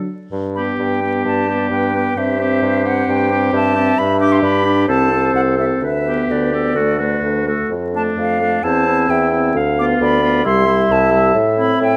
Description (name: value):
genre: quick classical-period movement for wind quintet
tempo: 131 BPM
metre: 4/4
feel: rubato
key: G major, C major from 7.7 s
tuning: A4 = 440 Hz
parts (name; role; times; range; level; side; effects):
- warm oboe; second line; 0.0-12.0 s; D4 to A4; -25 LUFS; equal; none
- mellow French horn; accompaniment; 0.0-12.0 s; G3 to D4; -23 LUFS; equal; none
- warm clarinet; accompaniment; 0.0-12.0 s; A4 to F5; -24 LUFS; equal; none
- warm bassoon; bass; 0.0-12.0 s; C2 to A2; -21 LUFS; equal; none
- silver concert flute; melody; 0.6-12.0 s; D5 to D6; -23 LUFS; equal; none
room: moderate recital hall reverb, RT60 1.4 s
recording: close, detailed microphones, vinyl crackle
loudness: -16 LUFS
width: mono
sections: 0.3-12.0 A section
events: none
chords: 0.3 G; 2.2 C/G; 4.0 G; 4.9 Am/C; 5.8 G/D; 7.7 Dm/F; 8.6 C/E; 9.6 Bdim/D; 10.5 C; 11.4 Am